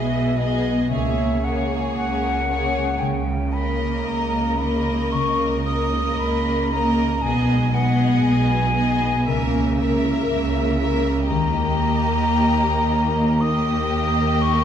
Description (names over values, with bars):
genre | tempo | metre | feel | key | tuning
classical, slow romantic movement for symphony orchestra | 52-62 BPM | 4/4 | rubato | unclear | A4 = 440 Hz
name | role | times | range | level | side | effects
rich studio violin section | melody | 0.0-14.6 s | C#5 to E5 | -32 LUFS | left 2 dB | none
rich studio violin section | second line | 0.0-14.6 s | G4 to A#4 | -28 LUFS | left 3 dB | none
silver concert flute | second line | 0.0-14.6 s | D#5 to D#6 | -25 LUFS | left 1 dB | none
rich studio viola section | accompaniment | 0.0-14.6 s | A#3 to B3 | -25 LUFS | equal | none
concert harp | arpeggios | 0.0-14.6 s | B2 to A#5 | -29 LUFS | left 7 dB | none
rich studio cello section | bass | 0.0-14.6 s | D#2 to C#3 | -26 LUFS | right 3 dB | none
rich studio double bass section | bass | 0.0-14.6 s | B1 to D#2 | -25 LUFS | right 2 dB | none
room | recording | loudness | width
wet recital hall reverb, RT60 1.5 s | recorded in a church or concert hall | -18 LUFS | side -9 dB against mid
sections
0.0-14.6 A section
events
none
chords
0.0 G#m/B; 0.9 F#9/C#; 3.0 D#7/C#; 7.2 G#m/B; 9.3 A#m7b5/C#; 11.3 D#